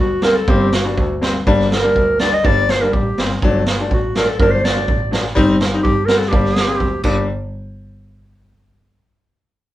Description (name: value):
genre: klezmer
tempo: 124 BPM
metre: 2/4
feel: straight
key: G harmonic minor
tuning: A4 = 440 Hz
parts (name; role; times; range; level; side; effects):
- warm clarinet; melody; 0.0-7.3 s; F#4 to Eb5; -18 LUFS; right 1 dB; none
- bright upright piano; accompaniment; 0.0-7.3 s; F#3 to F#4; -19 LUFS; left 2 dB; none
- clear double bass; bass; 0.0-7.3 s; G1 to G2; -22 LUFS; equal; none
- street-band drum kit; drums; 0.2-7.2 s; crash cymbal, kick drum, snare drum; -19 LUFS; right 1 dB; none
room: moderate studio ambience, RT60 0.5 s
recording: band playing live in one room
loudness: -14 LUFS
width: side -14 dB against mid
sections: 0.0-7.3 A section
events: speeding up 0.0-8.2; drum fill 7.0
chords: 0.0 Gm; 3.4 D/G; 5.4 Cm/G; 6.3 Gm; 7.3 N.C.